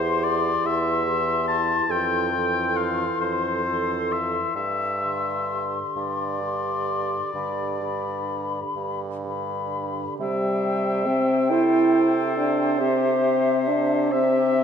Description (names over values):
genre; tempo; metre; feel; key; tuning
classical, slow romantic movement for wind quintet; 40-50 BPM (dotted quarters); 12/8; rubato; C major; A4 = 442 Hz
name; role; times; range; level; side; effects
silver concert flute; melody; 0.0-14.6 s; E5 to C6; -28 LUFS; left 7 dB; none
clear oboe; second line; 0.0-14.6 s; C5 to A5; -28 LUFS; left 3 dB; none
mellow French horn; accompaniment; 0.0-14.6 s; D3 to E4; -25 LUFS; equal; none
mellow clarinet; accompaniment; 0.0-14.6 s; G4 to C5; -32 LUFS; right 6 dB; none
warm bassoon; bass; 0.0-14.6 s; E2 to C3; -28 LUFS; right 3 dB; none
room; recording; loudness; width
wet concert hall reverb, RT60 2.0 s; none; -21 LUFS; side -7 dB against mid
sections
0.0-10.2 A section; 10.2-14.6 B section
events
none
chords
0.0 C/E; 1.9 Fmaj7; 4.5 Gsus4; 10.2 C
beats
0.65 1.89 3.20 | 4.55 5.96 7.34 8.76 | 10.20 11.49 12.80 14.12